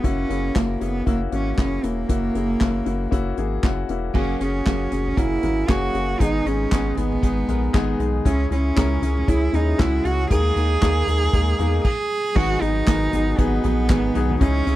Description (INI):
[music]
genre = piano-driven pop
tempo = 117 BPM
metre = 4/4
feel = swing 56% on 16ths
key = G# minor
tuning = A4 = 440 Hz
[part]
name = warm cello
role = melody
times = 0.0-14.8 s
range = A#3 to G#4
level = -24 LUFS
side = right 2 dB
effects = none
[part]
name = clear baby grand piano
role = accompaniment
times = 0.0-14.8 s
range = G#2 to B4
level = -26 LUFS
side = left 7 dB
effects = none
[part]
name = warm sub bass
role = bass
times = 0.0-14.8 s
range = E1 to E2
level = -24 LUFS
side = equal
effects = none
[part]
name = unplugged drum kit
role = drums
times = 0.0-14.8 s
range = crash cymbal, handclaps, hi-hat, kick drum, snare drum, toms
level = -22 LUFS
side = equal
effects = none
[part]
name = direct-recorded clean electric guitar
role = riff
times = 4.1-14.8 s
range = G#2 to A#4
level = -28 LUFS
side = right 5 dB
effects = none
[sound]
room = little or no reverb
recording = none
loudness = -18 LUFS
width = side -15 dB against mid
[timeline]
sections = 0.0-4.1 A section; 4.1-12.4 B section; 12.4-14.8 C section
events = stop 11.8-12.4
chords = 0.0 F#7; 4.1 F#add9; 6.2 G#m; 8.3 C#m; 10.3 D#sus4; 12.4 G#m7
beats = | 0.04 0.56 1.07 1.58 | 2.10 2.61 3.12 3.63 | 4.15 4.66 5.17 5.69 | 6.20 6.71 7.23 7.74 | 8.26 8.77 9.28 9.79 | 10.31 10.82 11.33 11.85 | 12.36 12.87 13.39 13.90 | 14.41